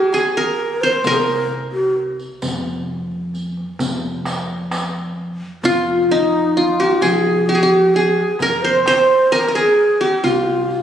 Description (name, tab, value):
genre	Arabic maqam ensemble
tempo	130 BPM (eighths)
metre	10/8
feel	straight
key	F maqam bayati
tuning	A4 = 441 Hz
part	qanun	melody	0.0-10.8 s	Eb4 to C5	-16 LUFS	equal	none
part	breathy low ney	second line	0.0-10.8 s	Eb4 to C5	-19 LUFS	right 1 dB	none
part	darbuka	percussion	0.1-10.8 s	none	-31 LUFS	equal	none
part	riq	percussion	0.1-10.8 s	none	-28 LUFS	equal	none
part	upright bass	bass	1.0-10.8 s	C2 to F3	-26 LUFS	equal	none
room	wet scoring stage reverb, RT60 1.7 s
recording	recorded on a phone in the room, studio reverb, compression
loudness	-15 LUFS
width	side -9 dB against mid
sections	0.0-10.8 A section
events	none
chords	none